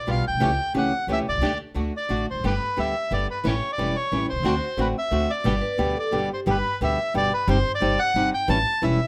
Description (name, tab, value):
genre	tango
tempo	179 BPM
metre	3/4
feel	rubato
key	G major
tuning	A4 = 440 Hz
part	bandoneon	melody	0.0-9.1 s	B4 to A5	-27 LUFS	equal	none
part	flamenco guitar	accompaniment	0.1-9.0 s	B2 to G4	-28 LUFS	equal	none
part	rich chamber string section	stabs	0.1-6.3 s	A3 to G4	-39 LUFS	equal	none
part	upright bass	bass	0.1-9.0 s	E1 to D2	-30 LUFS	equal	none
part	vibraphone with soft mallets	second line	5.6-6.4 s	G4 to B4	-31 LUFS	equal	none
room	light reverb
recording	close, detailed microphones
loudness	-24 LUFS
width	mono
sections	0.0-6.5 A section; 6.5-9.1 B section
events	none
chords	0.4 A7/C#; 1.4 Dsus4; 1.8 D; 2.4 Gadd9; 3.4 A7; 4.4 D7; 5.5 G; 7.5 Cm/G; 8.5 A7